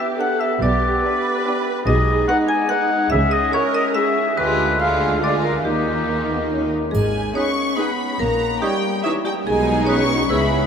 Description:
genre	cinematic, playful, whimsical film cue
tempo	142 BPM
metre	3/4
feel	straight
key	G# minor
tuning	A4 = 440 Hz
part	marimba with hard mallets	melody	0.0-10.7 s	E4 to G#5	-26 LUFS	right 2 dB	none
part	rich studio violin section	melody	0.0-10.7 s	D#4 to C#6	-28 LUFS	left 1 dB	none
part	rich studio violin section	second line	0.0-10.7 s	G#3 to G#4	-28 LUFS	right 1 dB	none
part	warm oboe	second line	0.0-10.5 s	G4 to G#5	-22 LUFS	left 3 dB	none
part	rich studio viola section	accompaniment	0.0-10.7 s	G#3 to B4	-26 LUFS	right 3 dB	none
part	mellow French horn section	sustained chords	0.0-10.7 s	E3 to G4	-25 LUFS	left 1 dB	none
part	rich studio cello section	bass	0.6-10.7 s	G#2 to D#3	-26 LUFS	right 1 dB	none
part	warm studio double bass section	bass	0.6-10.7 s	G#1 to D#2	-25 LUFS	equal	none
part	triangle	percussion	6.9-7.7 s	none	-46 LUFS	right 3 dB	none
part	mellow hollow silver concert flute	second line	7.4-10.4 s	D#6 to E6	-32 LUFS	right 4 dB	none
part	warm clarinet	second line	7.4-10.5 s	G4 to G#4	-31 LUFS	left 4 dB	none
room	wet cathedral reverb, RT60 6.4 s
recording	in a vast, echoing space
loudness	-17 LUFS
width	side -7 dB against mid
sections	0.0-6.9 A section; 6.9-10.7 B section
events	none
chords	0.0 G; 0.6 G/B; 1.9 G#m/B; 3.1 C#m; 4.4 Ddim7; 5.7 D#; 6.9 G#m; 8.2 D#7/A#; 9.5 G#m/B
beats	0.18 | 0.60 1.02 1.44 | 1.86 2.28 2.70 | 3.12 3.54 3.96 | 4.38 4.80 5.23 | 5.65 6.08 6.51 | 6.93 7.35 7.78 | 8.20 8.62 9.04 | 9.46 9.88 10.30

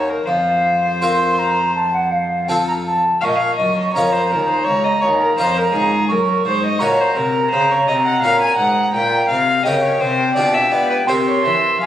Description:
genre	classical, baroque-style sonata movement with continuo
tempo	84 BPM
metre	4/4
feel	straight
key	unclear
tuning	A4 = 440 Hz
part	warm violin	melody	0.0-11.9 s	Ab4 to Ab5	-19 LUFS	left 2 dB	none
part	harpsichord	accompaniment	0.0-11.9 s	Db2 to Bb4	-22 LUFS	left 1 dB	none
part	warm cello	bass	0.0-11.9 s	Db2 to B3	-23 LUFS	left 1 dB	none
part	concert flute	second line	0.3-11.9 s	F5 to Db6	-18 LUFS	right 2 dB	none
room	moderate concert hall reverb, RT60 1.7 s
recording	recorded on a phone in the room, club reverb, compression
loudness	-14 LUFS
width	side -11 dB against mid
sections	0.0-11.9 A section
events	none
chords	0.3 Fsus4; 1.8 F; 3.2 Bbm; 6.1 Gb; 8.9 Gdim/Bb; 10.4 G7/B; 11.1 C7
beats	| 0.28 1.01 1.75 2.49 | 3.22 3.95 4.67 5.38 | 6.09 6.80 7.52 8.23 | 8.94 9.65 10.36 11.08 | 11.82

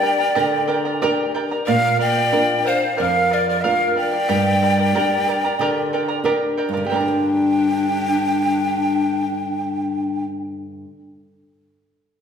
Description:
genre	andean folk, Andean ensemble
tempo	92 BPM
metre	4/4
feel	straight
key	G minor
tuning	A4 = 443 Hz
part	breathy mellow quena	melody	0.0-10.3 s	D5 to G5	-22 LUFS	equal	none
part	breathy pan flute	second line	0.0-10.2 s	D4 to D5	-22 LUFS	left 3 dB	none
part	charango	accompaniment	0.0-11.0 s	G4 to Bb5	-23 LUFS	right 2 dB	none
part	nylon-string guitar	accompaniment	0.0-11.0 s	F2 to D5	-23 LUFS	right 2 dB	none
room	wet recital hall reverb, RT60 1.6 s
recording	heard from further back in the room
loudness	-17 LUFS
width	side -7 dB against mid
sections	0.0-6.9 A section; 6.9-9.5 B section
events	none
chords	0.0 Gm; 1.7 Bb; 4.3 Gm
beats	0.35 1.01 | 1.67 2.32 2.98 3.63 | 4.28 4.94 5.59 6.24 | 6.89 7.54 8.19 8.84

